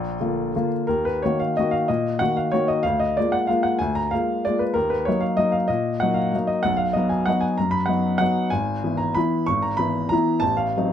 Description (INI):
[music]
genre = classical, piano waltz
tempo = 168-201 BPM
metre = 3/4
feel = rubato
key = Eb minor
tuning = A4 = 440 Hz
[part]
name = clear upright piano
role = solo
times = 0.0-10.9 s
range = G#1 to Db6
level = -20 LUFS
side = left 1 dB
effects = none
[sound]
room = little or no reverb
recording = close, detailed microphones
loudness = -20 LUFS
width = side -9 dB against mid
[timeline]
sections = 0.9-10.9 A section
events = none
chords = 0.0 Bb; 0.9 Ebm; 2.9 Bb7/D; 4.8 Ebm; 6.7 B; 8.5 E/G#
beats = 0.18 0.53 | 0.88 1.22 1.56 | 1.89 2.20 2.53 | 2.85 3.17 3.49 | 3.81 4.12 4.45 | 4.76 5.07 5.39 | 5.71 6.02 6.34 | 6.65 6.95 7.27 | 7.59 7.89 8.21 | 8.52 8.83 9.15 | 9.48 9.79 10.12 | 10.44 10.76